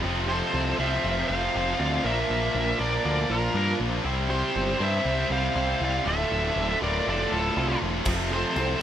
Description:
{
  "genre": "heavy metal",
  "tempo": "120 BPM",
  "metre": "4/4",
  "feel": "straight",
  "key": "unclear",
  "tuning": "A4 = 441 Hz",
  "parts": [
    { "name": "heavy high-gain guitar", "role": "riff", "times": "0.0-8.8 s", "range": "D2 to G3", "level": "-34 LUFS", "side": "left 12 dB", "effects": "distortion" },
    { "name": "tight distorted guitar", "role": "riff", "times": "0.0-8.8 s", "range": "D2 to C4", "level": "-32 LUFS", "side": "right 10 dB", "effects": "distortion" },
    { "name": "tight distorted guitar", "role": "riff", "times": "0.0-8.8 s", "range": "D2 to C5", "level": "-31 LUFS", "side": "left 2 dB", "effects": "distortion" },
    { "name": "growling picked electric bass", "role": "bass", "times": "0.0-8.7 s", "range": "D1 to G2", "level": "-29 LUFS", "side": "equal", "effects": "overdrive" },
    { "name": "nasal lead guitar with a parked wah", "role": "melody", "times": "0.3-8.8 s", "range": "A4 to F5", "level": "-28 LUFS", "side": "equal", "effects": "overdrive" },
    { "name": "high-gain lead guitar", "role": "second line", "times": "0.3-8.8 s", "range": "F4 to D5", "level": "-33 LUFS", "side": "right 4 dB", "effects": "distortion" },
    { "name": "tight metal drum kit", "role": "drums", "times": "8.1-8.7 s", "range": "china cymbal, crash cymbal, kick drum", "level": "-32 LUFS", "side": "equal", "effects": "none" }
  ],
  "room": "little or no reverb",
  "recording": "rough home demo mix",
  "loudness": "-23 LUFS",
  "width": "side -10 dB against mid",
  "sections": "0.0-8.8 A section",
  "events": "none",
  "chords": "0.0 F; 2.0 Bb; 4.0 C; 6.1 Dm; 8.1 F",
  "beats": "| 0.03 0.53 1.03 1.54 | 2.04 2.54 3.04 3.55 | 4.05 4.55 5.05 5.55 | 6.05 6.55 7.05 7.55 | 8.05 8.55"
}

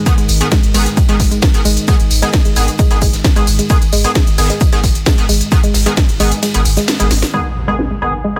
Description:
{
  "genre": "driving peak-time techno",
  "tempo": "132 BPM",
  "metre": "4/4",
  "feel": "straight",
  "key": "G# minor",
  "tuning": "A4 = 440 Hz",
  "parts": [
    { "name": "woody wave-folded pluck", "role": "riff", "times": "0.0-8.3 s", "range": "G#3", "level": "-23 LUFS", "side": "equal", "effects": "chorus, vintage 12-bit sampler grit, sidechain pumping, digital delay" },
    { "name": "analog drone", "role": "drone", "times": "0.0-7.4 s", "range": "G#2 to D#3", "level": "-30 LUFS", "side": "equal", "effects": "none" },
    { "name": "sync-sweep polysynth", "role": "stabs", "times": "0.1-8.4 s", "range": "D#3 to G#4", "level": "-23 LUFS", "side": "equal", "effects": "chorus, sidechain pumping, digital delay" },
    { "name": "electronic kick drum", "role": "drums", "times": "0.1-6.1 s", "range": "none", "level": "-14 LUFS", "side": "equal", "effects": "none" },
    { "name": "shaker and snare drum", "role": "drums", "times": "0.1-7.3 s", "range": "none", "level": "-31 LUFS", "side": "equal", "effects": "none" },
    { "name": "techno drum kit", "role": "drums", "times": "0.1-8.1 s", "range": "hi-hat, ride cymbal, snare drum, tambourine", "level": "-21 LUFS", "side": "equal", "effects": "low-pass filter on hats, low-pass filter on cymbals, low-pass filter on perc, low-pass filter on snare, low-pass filter on room" },
    { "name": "warm sub bass", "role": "bass", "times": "0.2-7.2 s", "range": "G#1", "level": "-18 LUFS", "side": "equal", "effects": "overdrive, sidechain pumping, low-pass filter" },
    { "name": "impact", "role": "sound effects", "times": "7.3-8.4 s", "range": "none", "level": "-24 LUFS", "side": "equal", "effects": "none" }
  ],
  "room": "little or no reverb",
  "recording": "dense, heavily limited modern master",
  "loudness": "-13 LUFS",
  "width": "mono",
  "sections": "0.0-7.3 A section; 7.3-8.4 B section",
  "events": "drop 0.0-7.3; kick drops out 6.4-7.3; band accent 6.9; drum fill 7.1; impact 7.3-8.4; filter sweep on drum 7.3-8.4",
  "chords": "0.0 G#m",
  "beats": "| 0.06 0.52 0.97 1.43 | 1.88 2.33 2.79 3.24 | 3.70 4.15 4.61 5.06 | 5.52 5.97 6.43 6.88 | 7.33 7.79 8.24"
}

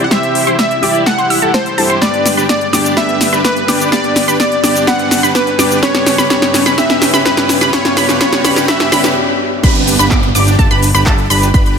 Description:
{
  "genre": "EDM, festival progressive house",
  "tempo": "126 BPM",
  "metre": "4/4",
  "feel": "straight",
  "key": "G major",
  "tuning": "A4 = 442 Hz",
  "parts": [
    { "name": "plucky unison lead", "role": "melody", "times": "0.0-9.1 s", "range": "B4 to F#5", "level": "-16 LUFS", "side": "equal", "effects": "ping-pong delay" },
    { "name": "clear concert grand piano", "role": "accompaniment", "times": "0.0-9.7 s", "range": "G2 to G4", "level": "-19 LUFS", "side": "left 2 dB", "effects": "sidechain pumping, ping-pong delay" },
    { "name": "wide unison pluck", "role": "arpeggios", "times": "0.0-11.8 s", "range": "A5 to E6", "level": "-18 LUFS", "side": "right 1 dB", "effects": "sidechain pumping, ping-pong delay" },
    { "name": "dense compressed supersaw", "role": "riff", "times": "0.0-11.8 s", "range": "C#4 to E5", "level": "-18 LUFS", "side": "equal", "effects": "sidechain pumping, low-pass filter, ping-pong delay" },
    { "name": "riser and downlifter", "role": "sound effects", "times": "0.7-11.8 s", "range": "none", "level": "-22 LUFS", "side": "right 3 dB", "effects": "none" },
    { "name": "big-room dance drum kit", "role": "drums", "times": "0.1-11.8 s", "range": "cabasa, crash cymbal, handclaps, hi-hat, snare drum", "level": "-15 LUFS", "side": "equal", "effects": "overdrive" },
    { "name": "electronic kick drum", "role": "drums", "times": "0.1-11.6 s", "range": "none", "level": "-13 LUFS", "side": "equal", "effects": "high-pass filter on kick" },
    { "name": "fat analog bass", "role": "bass", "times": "9.6-11.8 s", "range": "G1", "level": "-15 LUFS", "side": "equal", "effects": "sidechain pumping" }
  ],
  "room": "moderate lush hall reverb, RT60 2.0 s",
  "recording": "none",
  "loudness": "-9 LUFS",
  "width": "side -6 dB against mid",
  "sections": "0.0-9.6 A section; 9.6-11.8 B section",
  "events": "build-up 0.0-9.6; drum fill 0.0-9.2; stop 9.2-9.6; drop 9.6-11.8",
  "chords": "0.0 C; 2.0 G; 5.8 Em6/G; 9.6 G",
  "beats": "| 0.11 0.59 1.06 1.54 | 2.02 2.49 2.97 3.44 | 3.92 4.40 4.87 5.35 | 5.83 6.30 6.78 7.25 | 7.73 8.21 8.68 9.16 | 9.64 10.11 10.59 11.06 | 11.54"
}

